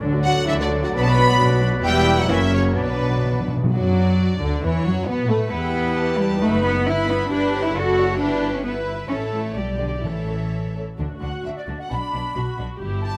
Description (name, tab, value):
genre	quick classical-period movement for symphony orchestra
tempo	133 BPM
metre	2/4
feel	rubato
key	B minor, D major from 7.3 s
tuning	A4 = 440 Hz
part	clear oboe	second line	0.0-3.5 s	C#5 to E5	-34 LUFS	equal	none
part	dark clarinet	second line	0.0-3.5 s	A4 to B4	-33 LUFS	equal	none
part	dark bassoon	accompaniment	0.0-3.5 s	F#3 to G3	-31 LUFS	equal	none
part	warm studio viola section	accompaniment	0.0-13.2 s	D3 to D5	-30 LUFS	equal	none
part	warm chamber double bass section	bass	0.0-13.2 s	E1 to B2	-28 LUFS	equal	none
part	warm studio cello section	bass	0.0-13.2 s	E2 to F#4	-26 LUFS	equal	none
part	clear studio violin section	melody	0.2-13.2 s	D4 to B5	-30 LUFS	equal	none
part	mellow flute section	second line	0.2-3.5, 11.2-13.1 s	B4 to B5	-31 LUFS	equal	none
part	warm studio violin section	second line	0.2-13.2 s	A3 to B5	-33 LUFS	equal	none
part	warm French horn section	sustained chords	0.2-10.8 s	B2 to D5	-30 LUFS	equal	none
part	timpani	percussion	2.8-3.7, 10.0-11.6 s	A2 to D3	-29 LUFS	equal	none
room	light reverb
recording	none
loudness	-21 LUFS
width	mono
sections	0.0-3.7 A section; 3.7-11.0 B section; 11.0-13.2 C section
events	timpani fill 2.8-3.7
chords	0.0 D; 0.9 Bm; 1.8 Em; 2.3 F#7; 2.8 Bm; 3.7 D; 4.6 F#5/E; 5.1 Asus2; 5.5 Em; 6.4 B7/F#; 6.9 Em/G; 7.3 G; 7.8 D/F#; 8.2 Em7/G; 9.1 A; 9.6 G/B; 10.0 A; 11.0 D; 11.9 Bm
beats	| 0.02 0.48 | 0.95 1.40 | 1.84 2.30 | 2.77 3.25 | 3.73 4.19 | 4.64 5.09 | 5.54 5.98 | 6.43 6.88 | 7.32 7.76 | 8.21 8.65 | 9.10 9.57 | 10.04 10.52 | 10.99 11.45 | 11.92 12.37 | 12.81